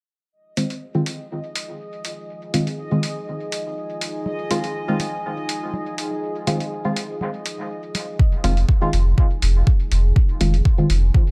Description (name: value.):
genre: dub techno.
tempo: 122 BPM.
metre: 4/4.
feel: swing 54% on 16ths.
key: F minor.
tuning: A4 = 439 Hz.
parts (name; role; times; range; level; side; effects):
deep dark ambient pad; sustained chords; 1.5-11.3 s; Eb4 to Ab4; -34 LUFS; equal; chorus, built-in reverb, sidechain pumping.
bubbling stepped-filter texture; texture; 0.6-8.2 s; Eb5; -38 LUFS; equal; chorus, built-in reverb, sidechain pumping.
deep mellow chord stab; stabs; 0.6-10.9 s; Eb3 to F4; -26 LUFS; equal; chorus, phaser, sidechain pumping, dub echo.
electronic hi-hat; drums; 0.6-11.0 s; none; -31 LUFS; equal; overdrive.
congas; percussion; 4.3-8.1 s; none; -37 LUFS; equal; sidechain pumping on perc, dub echo.
electronic kick drum; drums; 8.2-11.2 s; none; -18 LUFS; equal; overdrive.
warm sub bass; bass; 8.4-11.1 s; F1; -19 LUFS; equal; sidechain pumping.
room: light reverb, digital ambience.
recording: none.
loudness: -22 LUFS.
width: mono.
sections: 0.3-8.2 A section; 8.2-11.3 B section.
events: filter sweep on synth stab 0.3-8.2, 8.2-11.3.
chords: 0.3 Fm7.